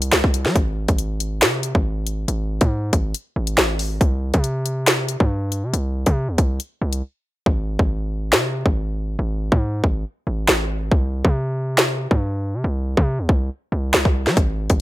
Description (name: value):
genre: hip hop, drill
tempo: 139 BPM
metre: 4/4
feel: half-time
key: unclear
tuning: A4 = 443 Hz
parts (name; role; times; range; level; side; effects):
- hard-hitting 808-style bass; bass; 0.0-14.8 s; Ab1 to G3; -22 LUFS; equal; none
- drill drum kit; drums; 0.0-14.8 s; finger snaps, hi-hat, kick drum, snare drum; -17 LUFS; equal; none
room: digital ambience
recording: none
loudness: -18 LUFS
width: side -16 dB against mid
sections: 0.0-14.8 A section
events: break 7.0-7.5; hi-hats muted 7.5-14.4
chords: none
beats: 0.12 | 0.56 0.99 1.42 1.85 | 2.28 2.71 3.15 3.58 | 4.01 4.44 4.87 5.30 | 5.74 6.17 6.60 7.03 | 7.46 7.89 8.33 8.76 | 9.19 9.62 10.05 10.48 | 10.92 11.35 11.78 12.21 | 12.64 13.07 13.51 13.94 | 14.37 14.80